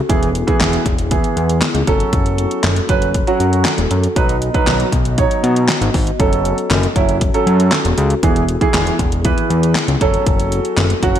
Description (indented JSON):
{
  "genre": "dance-pop",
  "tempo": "118 BPM",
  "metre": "4/4",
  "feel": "straight",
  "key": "F# minor",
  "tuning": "A4 = 440 Hz",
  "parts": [
    { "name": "glass harmonica", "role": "sustained chords", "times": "0.0-11.2 s", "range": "B3 to D#5", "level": "-23 LUFS", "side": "left 3 dB", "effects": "sidechain pumping" },
    { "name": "warm grand piano", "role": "accompaniment", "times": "0.1-11.2 s", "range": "E3 to C#5", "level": "-18 LUFS", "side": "right 4 dB", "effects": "wide subtle chorus, sidechain pumping" },
    { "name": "fat analog bass", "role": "bass", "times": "0.1-11.2 s", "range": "E1 to B2", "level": "-18 LUFS", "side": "left 1 dB", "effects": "sidechain pumping" },
    { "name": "pop drum kit", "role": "drums", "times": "0.1-11.2 s", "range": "handclaps, hi-hat, kick drum, snare drum", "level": "-17 LUFS", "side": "left 1 dB", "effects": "gated reverb" }
  ],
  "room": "light reverb, digital ambience",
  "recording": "bright 1980s-style digital production",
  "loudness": "-13 LUFS",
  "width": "side -10 dB against mid",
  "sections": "0.0-11.2 A section",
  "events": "none",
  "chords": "0.1 E; 1.9 F#m; 4.2 B; 6.2 F#m; 8.2 E; 10.0 F#m",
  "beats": "| 0.09 0.60 1.11 1.62 | 2.13 2.64 3.15 3.65 | 4.16 4.67 5.18 5.69 | 6.20 6.71 7.21 7.72 | 8.23 8.74 9.25 9.76 | 10.26 10.77"
}